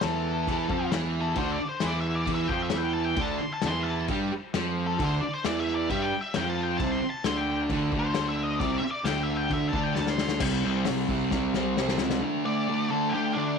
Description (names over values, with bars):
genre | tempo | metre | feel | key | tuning
garage rock duo or trio | 133 BPM | 4/4 | straight | unclear | A4 = 440 Hz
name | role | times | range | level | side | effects
octave-fuzz lead guitar | melody | 0.0-13.6 s | D4 to C6 | -32 LUFS | left 3 dB | distortion
fuzz guitar | riff | 0.0-13.6 s | C3 to G4 | -28 LUFS | right 1 dB | distortion
fuzz picked electric bass | bass | 0.0-12.2 s | C2 to G2 | -32 LUFS | right 1 dB | overdrive
vintage drum kit | drums | 0.0-12.2 s | crash cymbal, hi-hat, kick drum, snare drum | -32 LUFS | left 5 dB | none
room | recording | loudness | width
light reverb, studio reverb | 1960s-style stereo | -25 LUFS | side -6 dB against mid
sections
0.0-10.4 A section; 10.4-12.2 B section; 12.2-13.6 C section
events
lead electric guitar solo 0.0-10.4; drum fill 10.0-10.4, 11.3-12.2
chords
0.0 D5; 6.8 Csus2; 10.4 C5; 12.2 D5